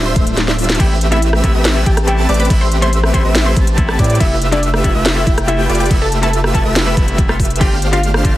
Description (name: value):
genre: future bass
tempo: 141 BPM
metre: 4/4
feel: half-time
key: A minor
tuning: A4 = 441 Hz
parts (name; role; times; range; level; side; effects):
- airy dreamy lead; arpeggios; 0.0-8.3 s; D5 to A5; -24 LUFS; equal; chorus, sidechain pumping
- supersaw chords; riff; 0.0-8.3 s; G3 to A5; -20 LUFS; equal; sidechain pumping
- saturated sub bass; bass; 0.0-8.4 s; D1 to A2; -16 LUFS; equal; sidechain pumping
- swell; sound effects; 0.1-0.8 s; none; -26 LUFS; left 2 dB; none
- wide unison pluck; melody; 0.1-8.1 s; D4 to C6; -22 LUFS; equal; sidechain pumping, digital delay
- electronic kick drum; drums; 0.2-8.3 s; none; -14 LUFS; equal; overdrive
- trap drum kit; drums; 0.2-8.3 s; crash cymbal, hi-hat, rim click, snare drum; -20 LUFS; equal; none
- clean electric guitar; accompaniment; 0.8-8.3 s; C3 to F4; -24 LUFS; left 2 dB; sidechain pumping
room: little or no reverb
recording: heavily compressed radio sound, multiband compression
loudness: -11 LUFS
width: side -15 dB against mid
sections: 0.0-8.4 A section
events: swell 0.1-0.8; kick drops out 0.4-0.8; drum fill 0.4-0.8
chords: 0.0 Dm11; 0.8 Am9; 4.2 Fmaj9#11; 7.6 Dm11